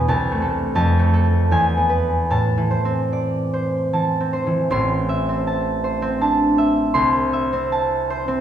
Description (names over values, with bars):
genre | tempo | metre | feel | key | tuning
classical, solo harp piece | 72-91 BPM | 3/4 | rubato | A minor | A4 = 439 Hz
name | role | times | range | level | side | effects
concert harp | solo | 0.0-8.4 s | A1 to C6 | -17 LUFS | equal | none
room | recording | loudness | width
wet recital hall reverb, RT60 1.4 s | recorded in a church or concert hall | -17 LUFS | side -10 dB against mid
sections
0.0-4.7 A section; 4.7-8.4 B section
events
none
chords
0.1 Am/C; 0.8 F; 1.5 E; 2.3 Am; 7.0 Am/C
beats
| 0.09 0.77 1.51 | 2.30 3.12 3.93 | 4.72 5.46 6.21 | 6.96 7.71